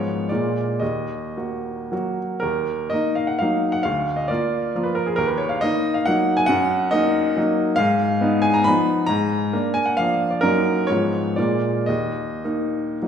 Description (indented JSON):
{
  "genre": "classical, romantic triple-time dance for piano with dotted rhythms",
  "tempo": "98-151 BPM",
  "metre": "3/4",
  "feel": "rubato",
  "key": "Eb minor",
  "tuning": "A4 = 440 Hz",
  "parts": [
    { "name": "clear baby grand piano", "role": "solo", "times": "0.0-13.1 s", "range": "D2 to Cb6", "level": "-19 LUFS", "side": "equal", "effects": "none" }
  ],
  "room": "wet recital hall reverb, RT60 1.8 s",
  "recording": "heard from further back in the room",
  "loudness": "-19 LUFS",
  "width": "side -8 dB against mid",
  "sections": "0.0-2.4 A section; 2.4-13.1 A section",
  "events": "none",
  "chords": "0.3 Bb7; 0.8 Ebm; 3.8 Bb/D; 5.2 Ebm; 6.5 Ebm/Gb; 7.8 Fm7b5/Ab; 9.1 Bb7/Ab; 10.4 Ebm/Gb; 10.9 Fdim/Ab; 11.4 Bb7; 11.9 Eb5"
}